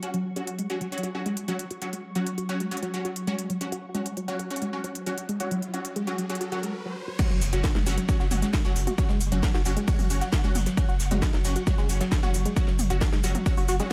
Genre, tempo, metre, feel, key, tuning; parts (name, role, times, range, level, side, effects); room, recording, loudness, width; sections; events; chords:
driving peak-time techno; 134 BPM; 4/4; straight; A4 = 440 Hz
rave stab; stabs; 0.0-13.9 s; F#3 to F#4; -36 LUFS; equal; chorus, built-in reverb, sidechain pumping, analog delay
swarming drone; drone; 0.0-13.9 s; F#3; -41 LUFS; equal; built-in reverb, sidechain pumping
techno drum kit; drums; 0.0-13.9 s; crash cymbal, hi-hat, ride cymbal, shaker, snare drum, toms; -36 LUFS; equal; overdrive, sidechain pumping on hats, sidechain pumping on toms, sidechain pumping on cymbals, sidechain pumping on perc, analog delay
tight sequenced synth; riff; 0.1-13.8 s; F#3 to F#4; -34 LUFS; equal; chorus, tube saturation, cassette tape, sidechain pumping, analog delay
riser and impact; sound effects; 5.2-9.0 s; -43 LUFS; equal
electronic kick drum; drums; 7.2-13.6 s; -27 LUFS; equal; overdrive
soft brush drum kit; drums; 7.2-13.9 s; hi-hat, ride cymbal, snare drum; -44 LUFS; equal; high-pass filter on cymbals, high-pass filter on hats, high-pass filter on snare, high-pass filter on room, analog delay
saturated sub bass; bass; 7.3-13.8 s; F#1; -30 LUFS; equal; tube saturation, sidechain pumping, low-pass filter
light reverb; echo-heavy mix; -27 LUFS; mono
0.0-7.2 A section; 7.2-13.9 B section
filter sweep on synth arpeggio sound 0.0-7.2; riser 5.2-7.2; break 6.7-7.2; drop 7.2-13.9; impact 7.2-9.0
0.0 F#5